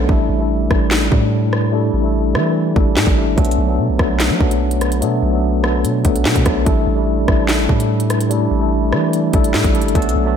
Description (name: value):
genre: hip hop, drill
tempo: 146 BPM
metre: 4/4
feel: half-time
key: unclear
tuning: A4 = 435 Hz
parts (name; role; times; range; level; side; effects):
- tine electric piano; accompaniment; 0.0-10.4 s; F#3 to A4; -18 LUFS; left 1 dB; medium stereo tremolo, low-pass filter
- long sustained 808-style bass; bass; 0.0-10.4 s; G1 to F#3; -18 LUFS; equal; none
- drill drum kit; drums; 0.1-10.2 s; handclaps, hi-hat, kick drum, rim click, snare drum; -18 LUFS; equal; none
room: moderate lush hall reverb, RT60 1.6 s, digital ambience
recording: dreamy mix soaked in reverb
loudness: -14 LUFS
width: side -8 dB against mid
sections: 0.0-10.4 A section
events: break 0.0-3.4; filter sweep on tine electric piano 0.0-10.0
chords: 0.1 A7sus4; 3.4 Bm7; 6.7 A7sus4